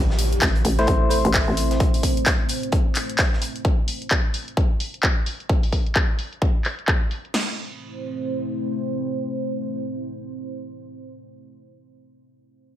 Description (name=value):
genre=bass house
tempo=130 BPM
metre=4/4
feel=swing 60% on 16ths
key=A minor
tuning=A4 = 440 Hz
part: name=deep dark ambient pad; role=sustained chords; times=0.1-10.5 s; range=A3 to C5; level=-29 LUFS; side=right 1 dB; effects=chorus, built-in reverb, sidechain pumping
part: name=hollow knocking FM bass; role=bass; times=0.0-1.8 s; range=A1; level=-22 LUFS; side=equal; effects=sidechain pumping
part: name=impact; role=sound effects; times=0.0-1.8 s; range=none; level=-31 LUFS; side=equal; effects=none
part: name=crunchy breakbeat drum kit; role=drums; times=0.1-3.5 s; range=hi-hat, snare drum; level=-36 LUFS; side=equal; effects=none
part: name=house drum kit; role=drums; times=0.2-7.3 s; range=handclaps, hi-hat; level=-24 LUFS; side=left 1 dB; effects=low-pass filter on hats, low-pass filter on cymbals, low-pass filter on perc, low-pass filter on snare, low-pass filter on toms
part: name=big-room dance drum kit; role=drums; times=0.4-7.5 s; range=crash cymbal, kick drum, snare drum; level=-21 LUFS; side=equal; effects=none
part: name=percussive organ stab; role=stabs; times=0.8-2.0 s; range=A3 to C5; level=-23 LUFS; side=left 1 dB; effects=chorus, sidechain pumping, digital delay
room=digital ambience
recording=none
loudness=-20 LUFS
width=side -12 dB against mid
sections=0.0-7.3 A section; 7.3-11.0 B section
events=impact 0.0-1.8; filter sweep on FM bass 0.0-1.8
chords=0.0 Am